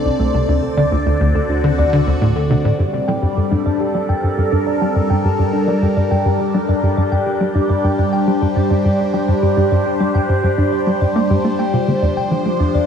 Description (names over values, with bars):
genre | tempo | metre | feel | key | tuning
ambient, sequencer-driven space music | 104 BPM | 4/4 | straight | G minor | A4 = 439 Hz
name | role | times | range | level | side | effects
phased analog pad | sustained chords | 0.0-12.9 s | C3 to D5 | -18 LUFS | equal | phaser, chorus, shimmer reverb
thumb-piano-like synth pluck | arpeggios | 0.0-12.9 s | A3 to G5 | -22 LUFS | moving between left 3 dB and right 4 dB | chorus, auto-pan, cassette tape, tape echo, shimmer reverb
warm sub bass | bass | 0.0-2.8 s | C2 to D2 | -24 LUFS | equal | none
tight sequencer bass | riff | 0.1-12.9 s | C2 to Bb3 | -18 LUFS | equal | lush chorus, cassette tape, tape echo
room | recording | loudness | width
wet concert hall reverb, RT60 2.4 s | none | -14 LUFS | side -7 dB against mid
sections
0.0-2.8 A section; 2.8-12.9 B section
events
filter sweep on analog synth bass 0.0-2.8, 2.8-12.9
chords
0.5 D7; 2.8 Gmadd9; 12.0 F5